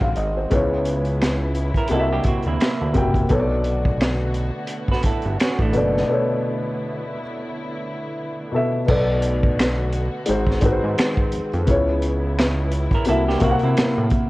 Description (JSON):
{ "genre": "R&B, neo-soul", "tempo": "86 BPM", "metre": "4/4", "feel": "swing 57% on 16ths", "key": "B minor", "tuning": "A4 = 442 Hz", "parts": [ { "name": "dark baby grand piano", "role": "accompaniment", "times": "0.0-14.3 s", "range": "B2 to G5", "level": "-23 LUFS", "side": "left 1 dB", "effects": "none" }, { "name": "dark studio string section", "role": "sustained chords", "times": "0.0-14.3 s", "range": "C3 to F#4", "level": "-30 LUFS", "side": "right 1 dB", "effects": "none" }, { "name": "fat analog bass", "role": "bass", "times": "0.0-14.1 s", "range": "F#1 to C3", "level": "-23 LUFS", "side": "equal", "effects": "transformer saturation" }, { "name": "crunchy breakbeat drum kit", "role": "drums", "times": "0.0-14.3 s", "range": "crash cymbal, finger snaps, hi-hat, kick drum, snare drum", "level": "-22 LUFS", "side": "equal", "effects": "none" }, { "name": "semi-hollow electric guitar", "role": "second line", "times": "1.8-6.6, 12.9-14.3 s", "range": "A3 to B4", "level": "-26 LUFS", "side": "right 4 dB", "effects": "none" } ], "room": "small room ambience", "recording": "worn, warbling old tape, cassette tape, warbly pitch drift", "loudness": "-18 LUFS", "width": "side -19 dB against mid", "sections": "0.0-8.9 A section; 8.9-14.3 B section", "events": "break 6.1-8.9", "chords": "0.0 G#7; 0.5 C#m7; 1.9 C7#11; 3.3 Bm7; 10.3 G#7; 11.7 C#m7; 13.1 C7#11", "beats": "| 0.51 1.21 1.91 2.60 | 3.30 4.00 4.70 5.40 | 6.09 6.79 7.49 8.19 | 8.88 9.58 10.28 10.98 | 11.68 12.37 13.07 13.77" }